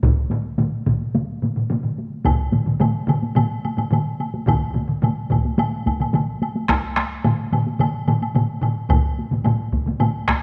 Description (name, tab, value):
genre	japanese traditional, taiko drum ensemble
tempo	108 BPM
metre	4/4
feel	straight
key	none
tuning	none
part	taiko ensemble	percussion	0.0-10.4 s	none	-28 LUFS	equal	none
part	taiko ensemble	percussion	0.0-10.4 s	none	-26 LUFS	equal	none
part	taiko ensemble	percussion	0.0-10.4 s	none	-27 LUFS	equal	none
part	taiko ensemble	percussion	0.0-10.4 s	none	-26 LUFS	equal	none
part	woodblock	percussion	2.3-10.4 s	none	-31 LUFS	equal	none
room	wet recital hall reverb, RT60 1.6 s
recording	close, detailed microphones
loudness	-21 LUFS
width	mono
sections	0.0-2.3 A section; 2.3-10.4 B section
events	none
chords	none